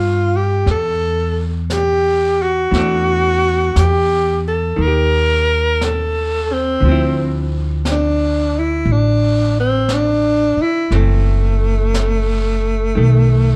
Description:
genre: jazz ballad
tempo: 58 BPM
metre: 4/4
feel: swing 67% on 8ths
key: D minor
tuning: A4 = 443 Hz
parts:
  - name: breathy tenor saxophone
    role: melody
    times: 0.0-13.6 s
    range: A3 to Bb4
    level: -19 LUFS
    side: equal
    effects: none
  - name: archtop guitar, miked and amplified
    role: accompaniment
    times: 0.0-13.6 s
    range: D3 to G4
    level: -26 LUFS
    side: equal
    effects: none
  - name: upright bass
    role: bass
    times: 0.0-13.6 s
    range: F#1 to G2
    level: -19 LUFS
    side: equal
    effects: none
  - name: jazz brush drum kit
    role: drums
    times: 0.7-13.6 s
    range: brushed snare drum, hi-hat, snare drum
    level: -32 LUFS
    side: equal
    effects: none
room: light reverb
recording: dark, warm production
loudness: -16 LUFS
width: mono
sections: 0.0-13.6 A section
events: none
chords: 0.0 Cmaj9 (rootless); 2.7 E9sus4; 4.8 Eb; 6.8 Dm9; 10.9 F#m7b5; 13.0 B7

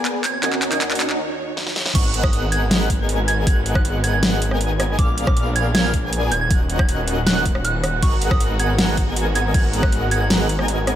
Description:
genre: future bass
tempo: 158 BPM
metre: 4/4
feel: half-time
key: G# dorian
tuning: A4 = 440 Hz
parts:
  - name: soft round pluck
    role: accompaniment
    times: 0.0-1.2 s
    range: B3 to D#5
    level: -32 LUFS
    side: left 2 dB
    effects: lush chorus, sidechain pumping, tape echo
  - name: rich studio string section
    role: sustained chords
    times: 0.0-11.0 s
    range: D#2 to C#5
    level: -32 LUFS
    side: right 2 dB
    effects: sidechain pumping
  - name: big bright polysynth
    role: riff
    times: 0.0-11.0 s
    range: B3 to G#5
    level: -26 LUFS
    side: left 1 dB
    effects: sidechain pumping
  - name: riser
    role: sound effects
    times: 0.0-1.2 s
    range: none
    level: -28 LUFS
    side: right 2 dB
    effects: none
  - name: dubstep drum kit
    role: drums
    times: 0.1-10.9 s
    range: crash cymbal, handclaps, hi-hat, rim click, snare drum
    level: -22 LUFS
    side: equal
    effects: high-pass filter on snare, high-pass filter on hats, high-pass filter on cymbals
  - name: soft synth bell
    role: melody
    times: 0.2-10.3 s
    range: C#6 to G#6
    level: -26 LUFS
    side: right 4 dB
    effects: chorus, vintage 12-bit sampler grit, sidechain pumping, tape echo
  - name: airy dreamy lead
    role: arpeggios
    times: 1.9-11.0 s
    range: E#6 to G#6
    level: -31 LUFS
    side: equal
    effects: chorus, sidechain pumping
  - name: wide detuned saw bass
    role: bass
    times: 1.9-11.0 s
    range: D#1 to A#1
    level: -22 LUFS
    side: equal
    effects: chorus, sidechain pumping
  - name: electronic kick drum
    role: drums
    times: 1.9-9.9 s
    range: none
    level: -18 LUFS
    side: equal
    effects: overdrive
  - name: Celtic harp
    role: arpeggios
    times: 8.0-11.0 s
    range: F#4 to F#5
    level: -30 LUFS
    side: left 5 dB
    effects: sidechain pumping, tape echo
room: light reverb, digital ambience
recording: none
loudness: -17 LUFS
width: side -11 dB against mid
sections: 0.0-1.9 A section; 1.9-11.0 B section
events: build-up 0.0-1.9; drum fill 0.0-1.2, 1.6-1.9; riser 0.0-1.2; filter sweep on string section 0.0-1.9; break 1.2-1.9; drop 1.9-11.0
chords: 0.2 D#m7; 1.9 G#m9; 5.0 A#7b9; 6.3 D#m7; 8.0 G#m9

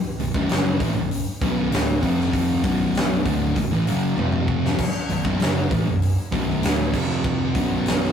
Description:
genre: stoner and doom metal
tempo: 98 BPM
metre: 4/4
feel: straight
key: unclear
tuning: A4 = 441 Hz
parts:
  - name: fuzz guitar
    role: riff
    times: 0.2-8.1 s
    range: B1 to F#3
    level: -30 LUFS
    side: left 1 dB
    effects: none
  - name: thick fuzz guitar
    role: riff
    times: 0.2-8.1 s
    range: B1 to F#3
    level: -25 LUFS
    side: left 5 dB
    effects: distortion
  - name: thick fuzz guitar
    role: riff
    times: 0.2-8.1 s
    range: B1 to F#3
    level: -25 LUFS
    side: right 3 dB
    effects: distortion
  - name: hollow-body short-scale picked electric bass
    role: bass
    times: 0.2-8.1 s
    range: B0 to A1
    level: -30 LUFS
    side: equal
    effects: overdrive
  - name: big rock drum kit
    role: drums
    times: 0.2-8.1 s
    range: crash cymbal, hi-hat, kick drum, snare drum, toms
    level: -24 LUFS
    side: equal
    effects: none
room: moderate studio reverb, RT60 0.6 s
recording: rough rehearsal-room recording, warm saturation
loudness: -19 LUFS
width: side -8 dB against mid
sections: 0.0-8.1 A section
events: drum fill 4.2-4.8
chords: 0.0 Bm; 2.0 F5; 2.6 Bm; 4.2 F5; 4.8 Bm; 6.9 F5; 7.5 B5

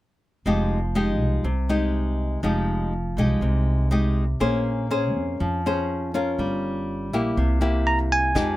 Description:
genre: bossa nova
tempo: 122 BPM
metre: 4/4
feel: straight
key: F minor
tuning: A4 = 438 Hz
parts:
  - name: nylon-string guitar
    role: accompaniment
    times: 0.5-8.6 s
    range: C3 to C5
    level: -24 LUFS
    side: left 1 dB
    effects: none
  - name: upright bass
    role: bass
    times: 0.5-8.6 s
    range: F1 to F2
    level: -24 LUFS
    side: equal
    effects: none
  - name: bell-like tine electric piano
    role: melody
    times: 7.9-8.6 s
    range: Ab5 to Bb5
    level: -21 LUFS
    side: right 2 dB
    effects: none
  - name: vintage brush drum kit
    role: drums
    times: 8.4-8.5 s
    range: hi-hat, kick drum, rim click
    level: -27 LUFS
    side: equal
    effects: none
room: little or no reverb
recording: close, detailed microphones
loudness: -21 LUFS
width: side -16 dB against mid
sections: 0.5-8.4 A section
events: none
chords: 0.5 Fm9; 4.4 Bbm9; 6.4 Gm7b5; 7.4 C7

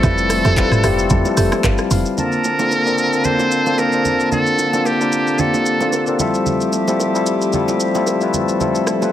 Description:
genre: amapiano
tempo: 112 BPM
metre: 4/4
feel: swing 55% on 16ths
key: Bb lydian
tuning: A4 = 440 Hz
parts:
  - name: trumpet with metal mute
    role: melody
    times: 0.0-6.2 s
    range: G4 to C5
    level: -20 LUFS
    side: right 1 dB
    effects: tape echo
  - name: tine electric piano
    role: accompaniment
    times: 0.0-9.1 s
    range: G3 to C6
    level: -18 LUFS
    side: left 3 dB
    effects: none
  - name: warm woodwind section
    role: sustained chords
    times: 0.0-9.1 s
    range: D3 to A5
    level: -23 LUFS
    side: right 1 dB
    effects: sidechain pumping
  - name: buzzing marimba with medium mallets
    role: stabs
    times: 0.0-1.5 s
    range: G4 to E5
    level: -26 LUFS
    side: right 3 dB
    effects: tape echo
  - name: woody log drum bass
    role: bass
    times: 0.0-2.0 s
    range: F1 to F2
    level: -19 LUFS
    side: equal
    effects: none
  - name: smooth R&B drum kit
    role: drums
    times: 0.0-9.1 s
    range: handclaps, hi-hat, kick drum, rim click, shaker, toms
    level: -22 LUFS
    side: equal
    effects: none
  - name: congas and bongos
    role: percussion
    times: 0.0-9.1 s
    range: none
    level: -26 LUFS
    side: right 5 dB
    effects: none
room: light reverb, studio ambience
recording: heavily compressed radio sound, multiband compression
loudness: -14 LUFS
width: side -11 dB against mid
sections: 0.0-2.2 A section; 2.2-9.1 B section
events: drop 0.0-2.2; tine electric piano fill 0.6-2.2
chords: 0.0 Fmaj9; 2.2 Bbmaj9; 6.2 Fmaj9

